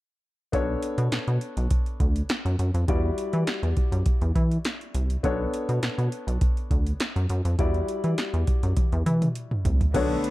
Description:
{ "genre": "early-eighties boogie funk", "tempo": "102 BPM", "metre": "4/4", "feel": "straight", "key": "B minor", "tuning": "A4 = 440 Hz", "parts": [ { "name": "warm grand piano", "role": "accompaniment", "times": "0.5-10.3 s", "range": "G3 to D5", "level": "-30 LUFS", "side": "left 3 dB", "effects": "none" }, { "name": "rubbery square bass", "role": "bass", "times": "0.5-10.2 s", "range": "B1 to E3", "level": "-24 LUFS", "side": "equal", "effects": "none" }, { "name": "electro analog drum machine", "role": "drums", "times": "0.5-10.3 s", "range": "crash cymbal, handclaps, hi-hat, kick drum, snare drum, toms", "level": "-26 LUFS", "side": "equal", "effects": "none" }, { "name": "bright studio string section", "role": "sustained chords", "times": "9.9-10.3 s", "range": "D3 to B3", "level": "-32 LUFS", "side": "right 2 dB", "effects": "none" } ], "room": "little or no reverb", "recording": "dark, warm production", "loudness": "-23 LUFS", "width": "side -17 dB against mid", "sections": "0.5-9.9 A section", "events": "drum fill 8.8-9.9", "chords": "0.5 Bm9; 2.9 Em9; 5.2 Bm9; 7.6 Em9" }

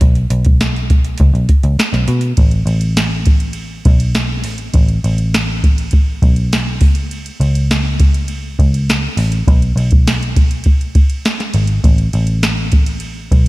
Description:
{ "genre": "indie pop, bedroom pop", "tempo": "102 BPM", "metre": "4/4", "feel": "straight", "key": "unclear", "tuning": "A4 = 440 Hz", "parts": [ { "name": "vintage muted picked electric bass", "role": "bass", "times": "0.0-13.5 s", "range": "G#1 to B2", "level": "-16 LUFS", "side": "equal", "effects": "none" }, { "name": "soft vintage rhythm box", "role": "drums", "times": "0.0-13.5 s", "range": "hi-hat, kick drum, ride cymbal, snare drum", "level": "-13 LUFS", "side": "equal", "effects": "none" } ], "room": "little or no reverb", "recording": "none", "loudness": "-11 LUFS", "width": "side -19 dB against mid", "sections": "0.0-2.4 A section; 2.4-13.5 A section", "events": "none", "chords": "none" }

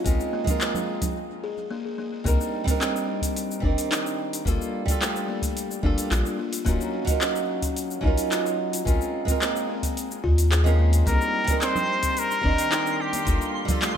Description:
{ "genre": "sunset chillout", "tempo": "109 BPM", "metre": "4/4", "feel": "straight", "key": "C minor", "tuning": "A4 = 441 Hz", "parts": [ { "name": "flamenco guitar", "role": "accompaniment", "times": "0.0-14.0 s", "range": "Eb3 to D5", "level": "-28 LUFS", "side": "moving between left 2 dB and right 6 dB", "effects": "auto-pan, dub echo, shimmer reverb" }, { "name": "buzzing kalimba", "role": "arpeggios", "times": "0.0-14.0 s", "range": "A3 to Ab4", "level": "-32 LUFS", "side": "left 4 dB", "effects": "dub echo, shimmer reverb" }, { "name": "round analog bass", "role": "bass", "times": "0.1-13.4 s", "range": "Eb1 to Eb2", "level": "-21 LUFS", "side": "equal", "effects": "none" }, { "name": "deep house drum kit", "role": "drums", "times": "0.1-13.9 s", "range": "handclaps, hi-hat, shaker", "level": "-29 LUFS", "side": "left 1 dB", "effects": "overdrive" }, { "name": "electronic kick drum", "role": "drums", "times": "0.1-13.8 s", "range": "none", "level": "-26 LUFS", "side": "equal", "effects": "none" }, { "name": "congas", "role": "percussion", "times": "0.5-1.1, 11.8-13.8 s", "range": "none", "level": "-35 LUFS", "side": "right 6 dB", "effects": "analog delay" }, { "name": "trumpet with straight mute", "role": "melody", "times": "11.1-13.6 s", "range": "G4 to C5", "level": "-25 LUFS", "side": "left 1 dB", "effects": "analog delay, shimmer reverb" }, { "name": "twinkling granular texture", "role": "texture", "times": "11.6-14.0 s", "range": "C6", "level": "-36 LUFS", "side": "right 2 dB", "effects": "built-in reverb, shimmer reverb" } ], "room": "light reverb", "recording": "echo-heavy mix", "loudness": "-22 LUFS", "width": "side -9 dB against mid", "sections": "0.0-2.3 A section; 2.3-14.0 B section", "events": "break 1.2-2.3", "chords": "0.1 Bbm9; 2.3 Cm9; 4.5 Gm9; 6.4 Ebm9; 8.9 Bbm9; 11.1 Cm9; 13.3 Gm9" }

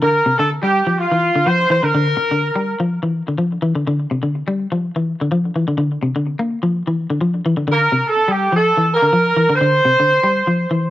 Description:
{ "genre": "afrobeat", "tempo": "125 BPM", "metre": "4/4", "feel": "swing 55% on 16ths", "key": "C mixolydian", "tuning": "A4 = 438 Hz", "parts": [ { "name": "warm horn section", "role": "melody", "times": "0.0-2.8, 7.7-10.9 s", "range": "F4 to C5", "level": "-15 LUFS", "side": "right 1 dB", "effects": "cassette tape, plate reverb, tape echo" }, { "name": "semi-hollow electric guitar", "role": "arpeggios", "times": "0.0-10.9 s", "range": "C3 to Bb3", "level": "-18 LUFS", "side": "left 2 dB", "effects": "cassette tape" } ], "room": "wet booth ambience, RT60 0.2 s", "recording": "home recording on cassette", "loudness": "-15 LUFS", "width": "side -14 dB against mid", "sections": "0.0-10.9 A section", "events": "none", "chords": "0.0 C9sus4 (rootless)" }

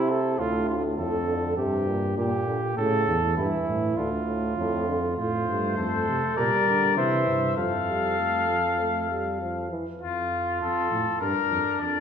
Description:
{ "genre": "classical, imitative canzona for brass ensemble", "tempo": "100 BPM", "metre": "4/4", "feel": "straight", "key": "D minor, F major from 5.2 s", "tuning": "A4 = 440 Hz", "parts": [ { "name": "mellow flugelhorn", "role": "second line", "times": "0.0-12.0 s", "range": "D4 to C5", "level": "-28 LUFS", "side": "right 2 dB", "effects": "none" }, { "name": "warm euphonium", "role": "accompaniment", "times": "0.0-9.9 s", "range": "A2 to A3", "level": "-30 LUFS", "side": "right 1 dB", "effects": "none" }, { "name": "dark bass trombone", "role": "bass", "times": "0.4-12.0 s", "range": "D2 to D3", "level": "-29 LUFS", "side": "right 1 dB", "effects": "none" }, { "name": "mellow trumpet", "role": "melody", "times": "5.2-12.0 s", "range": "F4 to F5", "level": "-26 LUFS", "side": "left 6 dB", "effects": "none" } ], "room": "wet recital hall reverb, RT60 1.8 s", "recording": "recorded in a church or concert hall", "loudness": "-23 LUFS", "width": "side -7 dB against mid", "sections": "0.0-5.2 A section; 5.2-10.0 B section; 10.0-12.0 C section", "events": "none", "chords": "0.4 Dm; 1.6 Gmadd11; 2.8 A; 4.0 Dm; 5.2 F; 6.4 Gm/Bb; 7.0 C; 7.6 F; 11.2 Gm" }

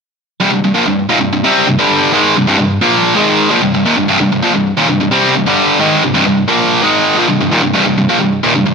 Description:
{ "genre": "metal", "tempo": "131 BPM", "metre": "4/4", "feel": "straight", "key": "C minor", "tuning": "A4 = 440 Hz", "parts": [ { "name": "high-gain distorted guitar", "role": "solo", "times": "0.4-8.7 s", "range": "C2 to C4", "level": "-9 LUFS", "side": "equal", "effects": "distortion, digital delay" } ], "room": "light reverb, digital ambience", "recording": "none", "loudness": "-9 LUFS", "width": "side -5 dB against mid", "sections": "0.4-8.7 A section", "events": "none", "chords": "0.4 Cm" }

